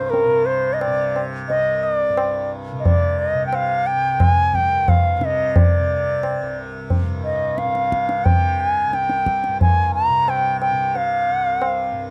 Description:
indian classical, Hindustani; 89 BPM; 4/4; straight; C raga darbari; A4 = 440 Hz
bright reedy bansuri; melody; 0.0-12.0 s; Bb4 to Bb5; -21 LUFS; equal
tanpura; drone; 0.0-12.1 s; C2 to C3; -30 LUFS; equal
tabla; percussion; 0.1-11.9 s; -22 LUFS; equal
light reverb; dry, close 1970s-style studio recording; -19 LUFS; mono
0.0-12.1 A section
| 0.14 0.81 1.49 2.17 | 2.85 3.53 4.21 4.88 | 5.56 6.23 6.91 7.58 | 8.26 8.93 9.60 10.27 | 10.94 11.61

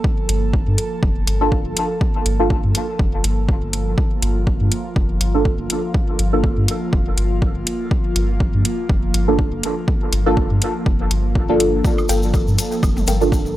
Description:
dub techno; 122 BPM; 4/4; swing 56% on 16ths; G minor; A4 = 442 Hz
airy breathy pad; sustained chords; 0.0-13.6 s; F3 to A4; -26 LUFS; equal; chorus, sidechain pumping
electronic kick drum; drums; 0.0-13.4 s; -20 LUFS; equal; overdrive, studio reverb
soft dub sub bass; bass; 0.3-13.6 s; F1 to G2; -20 LUFS; equal; tube saturation, sidechain pumping
electronic hi-hat; drums; 0.3-13.2 s; -21 LUFS; left 1 dB; overdrive, studio reverb
deep mellow chord stab; stabs; 1.4-13.3 s; Bb3 to A4; -21 LUFS; right 1 dB; chorus, phaser, sidechain pumping, dub echo
egg shaker; percussion; 11.8-13.5 s; -31 LUFS; left 3 dB
electronic woodblock and toms; percussion; 12.0-13.2 s; -30 LUFS; equal; sidechain pumping on perc, studio reverb, sidechain pumping on toms, dub echo
filtered dub chord stab; riff; 12.1-13.3 s; A4 to G5; -26 LUFS; left 3 dB; phaser, cassette tape, sidechain pumping, dub echo
little or no reverb; dry, gritty hardware recording, transformer saturation; -16 LUFS; side -14 dB against mid
0.0-13.6 A section
0.0 Gm9
| 0.04 0.54 1.03 1.52 | 2.01 2.50 3.00 3.49 | 3.98 4.47 4.96 5.45 | 5.95 6.44 6.93 7.42 | 7.91 8.40 8.90 9.39 | 9.88 10.37 10.86 11.36 | 11.85 12.34 12.83 13.32

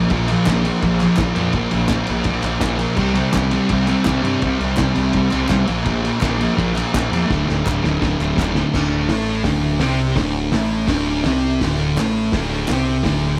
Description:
garage rock duo or trio; 167 BPM; 4/4; straight; D minor; A4 = 440 Hz
thick fuzz guitar; riff; 0.0-13.4 s; D2 to C4; -20 LUFS; equal; distortion
fuzz picked electric bass; bass; 0.0-13.4 s; D1 to G2; -27 LUFS; equal; overdrive
cloth-damped thuddy drum kit; drums; 0.1-13.1 s; crash cymbal, hi-hat, kick drum, ride cymbal, snare drum; -26 LUFS; equal
group handclap; percussion; 0.5-8.5, 12.0-12.8 s; -34 LUFS; equal
moderate small room reverb, RT60 0.6 s; band playing live in one room; -19 LUFS; mono
0.0-8.7 A section; 8.7-13.4 B section
drum fill 7.3-8.7
0.0 Bb5; 3.0 C5; 5.7 Bb5; 7.3 D5
| 0.10 0.46 0.82 1.18 | 1.54 1.90 2.26 2.62 | 2.98 3.34 3.70 4.06 | 4.42 4.78 5.14 5.50 | 5.87 6.23 6.59 6.95 | 7.30 7.67 8.02 8.38 | 8.74 9.10 9.46 9.82 | 10.18 10.53 10.89 11.25 | 11.61 11.96 12.32 12.68 | 13.03 13.39

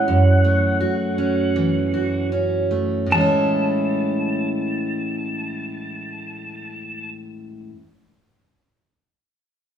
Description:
pop; 75-84 BPM; 4/4; swing 55% on 16ths; A major; A4 = 440 Hz
clean lap steel guitar; melody; 0.0-7.1 s; F#5 to A5; -26 LUFS; right 1 dB
picked steel-string acoustic guitar; accompaniment; 0.0-7.8 s; F#2 to F#4; -20 LUFS; right 1 dB
wet stone room reverb, RT60 1.1 s; band playing live in one room, studio ambience; -18 LUFS; side -8 dB against mid
0.0-3.1 A section; 3.1-6.3 B section
slowing down 0.0-3.1
0.1 F#m7; 3.1 Amaj7
| 0.08 0.81 1.55 2.31 | 3.10 3.91 4.71 5.52

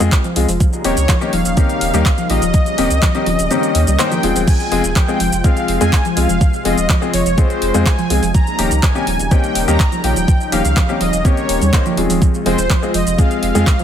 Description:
progressive house; 124 BPM; 4/4; straight; A4 = 439 Hz
warm analog pad; sustained chords; 0.0-13.8 s; C3 to F4; -25 LUFS; equal; chorus, sidechain pumping
soft round pluck; arpeggios; 0.0-13.8 s; F3 to F4; -22 LUFS; right 1 dB; chorus, sidechain pumping, dub echo
clear baby grand piano; stabs; 0.0-13.6 s; Eb3 to C5; -20 LUFS; left 6 dB; sidechain pumping, dub echo
saturated sub bass; bass; 0.0-13.6 s; Eb1 to F2; -19 LUFS; equal; sidechain pumping
pop drum kit; drums; 0.0-13.8 s; crash cymbal, handclaps, hi-hat, shaker; -22 LUFS; right 1 dB; overdrive
electronic kick drum; drums; 0.1-13.8 s; -14 LUFS; equal; overdrive
soft supersaw; melody; 0.8-13.8 s; C5 to Bb5; -21 LUFS; right 1 dB; sidechain pumping, dub echo
light reverb; -13 LUFS; side -9 dB against mid
0.0-13.8 A section
kick drops out 3.5-4.5
0.0 Fm; 0.6 Eb7; 4.5 Fm; 8.3 Eb7; 12.2 Fm
0.12 | 0.60 1.09 1.57 2.06 | 2.54 3.02 3.51 3.99 | 4.47 4.96 5.44 5.93 | 6.41 6.89 7.38 7.86 | 8.35 8.83 9.31 9.80 | 10.28 10.77 11.25 11.73 | 12.22 12.70 13.18 13.67

